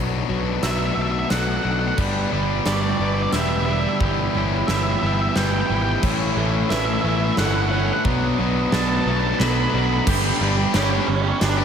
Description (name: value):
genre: post-rock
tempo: 89 BPM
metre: 3/4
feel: straight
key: unclear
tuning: A4 = 441 Hz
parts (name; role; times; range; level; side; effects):
- twelve-string electric guitar; arpeggios; 0.0-10.1 s; G2 to E4; -30 LUFS; left 2 dB; none
- vibraphone with medium hard mallets; arpeggios; 0.0-10.1 s; A4 to C#6; -33 LUFS; right 2 dB; slapback echo, digital delay
- overdriven electric guitar; riff; 0.0-11.6 s; A2 to G4; -25 LUFS; left 11 dB; slapback echo
- fuzz picked electric bass; bass; 0.0-11.6 s; E1 to B1; -24 LUFS; equal; overdrive
- octave-fuzz lead guitar; melody; 0.6-11.6 s; C#4 to B5; -27 LUFS; right 2 dB; distortion, slapback echo, digital delay
- huge arena drum kit; drums; 0.6-11.6 s; crash cymbal, hi-hat, kick drum, ride cymbal, snare drum; -27 LUFS; equal; none
- overdriven electric guitar; riff; 2.0-11.6 s; E2 to G4; -25 LUFS; right 10 dB; slapback echo
room: moderate lush hall reverb, RT60 2.6 s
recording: big arena sound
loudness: -18 LUFS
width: side -7 dB against mid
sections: 0.0-10.1 A section; 10.1-11.6 B section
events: build-up 0.0-10.1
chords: 0.0 Bm7; 2.0 G; 4.0 Em/G; 6.0 Aadd9; 8.1 Bm7; 10.1 G